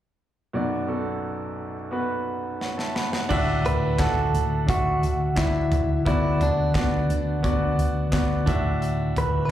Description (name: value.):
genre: piano-driven pop.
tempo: 87 BPM.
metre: 4/4.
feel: straight.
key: unclear.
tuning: A4 = 440 Hz.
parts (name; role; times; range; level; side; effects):
clear grand piano; accompaniment; 0.5-9.5 s; B1 to B5; -26 LUFS; equal; plate reverb, slapback echo.
modern studio drum kit; drums; 2.6-9.3 s; crash cymbal, handclaps, hi-hat, kick drum, snare drum, toms; -27 LUFS; equal; none.
vintage muted fingered electric bass; bass; 3.3-9.5 s; D2; -24 LUFS; left 1 dB; none.
direct-recorded clean electric guitar; melody; 3.7-9.5 s; D4 to B4; -27 LUFS; right 2 dB; plate reverb, slapback echo, ping-pong delay.
room: light reverb.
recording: live gig heard through the venue's PA, club reverb.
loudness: -22 LUFS.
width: side -12 dB against mid.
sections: 0.5-3.3 A section; 3.3-9.5 B section.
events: drum fill 2.6-3.3.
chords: 0.5 Bm; 3.3 Dadd9; 6.1 Bm/D; 8.5 Dadd9.